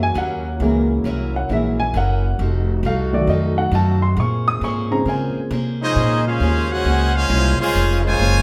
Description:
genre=jazz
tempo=134 BPM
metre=4/4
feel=swing 65% on 8ths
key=Bb minor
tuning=A4 = 440 Hz
part: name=picked acoustic archtop guitar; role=accompaniment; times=0.0-8.4 s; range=F3 to C5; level=-32 LUFS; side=equal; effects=none
part: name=warm baby grand piano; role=accompaniment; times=0.0-5.9 s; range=Db3 to Eb6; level=-23 LUFS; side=equal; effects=none
part: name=warm trombone section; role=sustained chords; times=0.0-8.4 s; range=Bb2 to Ab4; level=-32 LUFS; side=equal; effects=none
part: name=upright bass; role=bass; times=0.0-8.4 s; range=F1 to Db3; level=-22 LUFS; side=equal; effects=none
part: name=brilliant trumpet section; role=melody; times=5.8-8.4 s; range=Db4 to Ab5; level=-22 LUFS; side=equal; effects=none
part: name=bright trombone section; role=second line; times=5.8-8.4 s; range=Db3 to Gb4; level=-25 LUFS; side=equal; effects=none
room=moderate large studio reverb, RT60 1.1 s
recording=band playing live in one room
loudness=-19 LUFS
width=mono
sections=0.0-6.0 A section; 6.0-8.4 B section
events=grand piano solo 0.0-6.0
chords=0.0 Gb7; 2.4 F7b9; 4.2 Bbm9

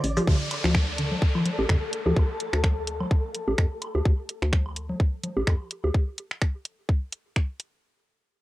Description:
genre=minimal techno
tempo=127 BPM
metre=4/4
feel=swing 56% on 16ths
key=D minor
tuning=A4 = 442 Hz
part: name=hollow knocking FM bass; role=bass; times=0.0-5.9 s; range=A1 to F2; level=-27 LUFS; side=equal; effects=sidechain pumping
part: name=garage drum kit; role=drums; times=0.0-7.7 s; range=finger snaps, hi-hat, shaker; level=-30 LUFS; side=equal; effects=overdrive
part: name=flickering grainy texture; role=texture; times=0.0-4.1 s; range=A4 to D5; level=-34 LUFS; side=left 2 dB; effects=built-in reverb, sidechain pumping, cassette tape
part: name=resonant blip pluck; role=riff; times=0.2-2.1 s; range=D3 to F3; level=-28 LUFS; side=left 1 dB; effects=phaser, sidechain pumping, cassette tape, analog delay
part: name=bongos, woodblock and congas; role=percussion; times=0.2-5.9 s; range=none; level=-32 LUFS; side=right 1 dB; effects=none
part: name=electronic kick drum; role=drums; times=0.3-7.5 s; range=none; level=-22 LUFS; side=equal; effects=overdrive
part: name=downlifter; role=sound effects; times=0.3-4.1 s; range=none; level=-35 LUFS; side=equal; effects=none
room=light reverb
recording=home recording on cassette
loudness=-23 LUFS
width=side -17 dB against mid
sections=0.3-7.8 A section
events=break 0.0; filter sweep on FM bass 0.3-5.9; filter sweep on synth pluck 0.3-2.2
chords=0.3 D5

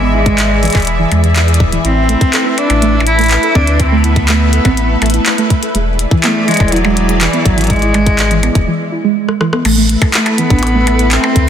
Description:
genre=IDM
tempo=123 BPM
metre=4/4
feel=straight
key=unclear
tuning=A4 = 440 Hz
part: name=rich cello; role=melody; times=0.0-11.5 s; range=E3 to E4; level=-16 LUFS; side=equal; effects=vintage 12-bit sampler grit, tape echo
part: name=soft string machine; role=sustained chords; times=0.0-11.5 s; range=E3 to D5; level=-19 LUFS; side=left 1 dB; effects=phaser, ensemble chorus
part: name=soft round pluck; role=arpeggios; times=0.0-11.1 s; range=E2 to A4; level=-17 LUFS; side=right 3 dB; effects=lush chorus, digital delay
part: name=warm sub bass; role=bass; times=0.0-11.5 s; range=D1 to E2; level=-14 LUFS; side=equal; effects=none
part: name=bubbling stepped-filter texture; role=texture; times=0.0-8.7 s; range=E5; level=-26 LUFS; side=equal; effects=chorus, built-in reverb
part: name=electronic kick drum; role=drums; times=0.3-11.5 s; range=none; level=-12 LUFS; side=equal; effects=none
part: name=glitchy drum kit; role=drums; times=0.3-11.5 s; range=crash cymbal, handclaps, hi-hat, percussion blips, rim click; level=-17 LUFS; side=equal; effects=none
room=light reverb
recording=dense, heavily limited modern master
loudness=-9 LUFS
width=side -9 dB against mid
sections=0.0-9.7 A section; 9.7-11.5 B section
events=break 8.7-9.7; drum fill 9.3-9.7; band accent 9.5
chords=0.0 E7; 1.8 Amadd9; 5.7 E7; 9.7 Amadd9

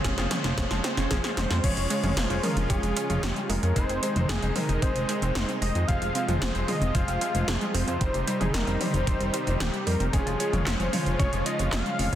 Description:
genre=synthwave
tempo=113 BPM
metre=4/4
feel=straight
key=unclear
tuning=A4 = 440 Hz
part: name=soft supersaw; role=sustained chords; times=0.0-12.2 s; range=C3 to C5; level=-33 LUFS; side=equal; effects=sidechain pumping, shimmer reverb
part: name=analog pluck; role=arpeggios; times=0.0-10.1 s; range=Eb3 to F4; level=-34 LUFS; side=right 3 dB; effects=chorus, digital delay, shimmer reverb
part: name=semi-hollow electric guitar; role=riff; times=0.0-1.4, 10.1-12.1 s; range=Db3 to Db4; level=-38 LUFS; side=left 1 dB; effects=none
part: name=clear electric grand piano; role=stabs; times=0.0-12.2 s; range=F3 to Db5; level=-34 LUFS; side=left 2 dB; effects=digital delay, shimmer reverb
part: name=chorused synth bass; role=bass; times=0.0-12.2 s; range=Eb1 to F2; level=-28 LUFS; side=equal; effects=none
part: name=80s electronic pad drums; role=drums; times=0.0-12.2 s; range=crash cymbal, handclaps, hi-hat, snare drum, toms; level=-30 LUFS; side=equal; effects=gated reverb on snare and toms
part: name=electronic kick drum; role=drums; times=0.0-11.3 s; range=none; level=-27 LUFS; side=equal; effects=none
part: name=wide unison lead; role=melody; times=1.1-12.2 s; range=G4 to F5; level=-31 LUFS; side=equal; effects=tape echo, shimmer reverb
room=light reverb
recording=dense, heavily limited modern master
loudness=-24 LUFS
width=side -11 dB against mid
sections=0.0-1.6 A section; 1.6-12.2 B section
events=drum fill 0.0-1.6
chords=0.0 Dbmaj7/F; 1.6 Db/F; 3.8 Ab/F; 5.9 Fm; 8.0 Cm/F; 10.1 Db/F

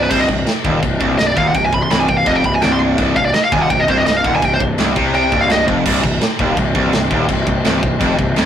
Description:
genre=heavy metal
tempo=167 BPM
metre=4/4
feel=straight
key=C minor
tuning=A4 = 440 Hz
part: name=high-gain lead guitar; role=melody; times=0.0-5.6 s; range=B4 to C6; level=-16 LUFS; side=right 1 dB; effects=distortion
part: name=distorted electric guitar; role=riff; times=0.0-8.5 s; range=C2 to C3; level=-21 LUFS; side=right 4 dB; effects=overdrive
part: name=sludgy distorted guitar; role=riff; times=0.0-8.5 s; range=C2 to C3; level=-21 LUFS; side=left 4 dB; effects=overdrive
part: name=fuzz picked electric bass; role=bass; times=0.0-8.5 s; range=C1 to C2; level=-20 LUFS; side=equal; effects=overdrive
part: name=tight metal drum kit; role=drums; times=0.1-8.5 s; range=china cymbal, crash cymbal, kick drum, snare drum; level=-20 LUFS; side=equal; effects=none
part: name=rich studio string section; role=sustained chords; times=5.9-8.5 s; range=Eb3 to C5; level=-28 LUFS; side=equal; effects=none
room=moderate booth ambience, RT60 0.2 s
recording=rough rehearsal-room recording, warm saturation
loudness=-13 LUFS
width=side -9 dB against mid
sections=0.0-5.9 A section; 5.9-8.5 B section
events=lead electric guitar solo 0.0-5.9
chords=0.0 Cm

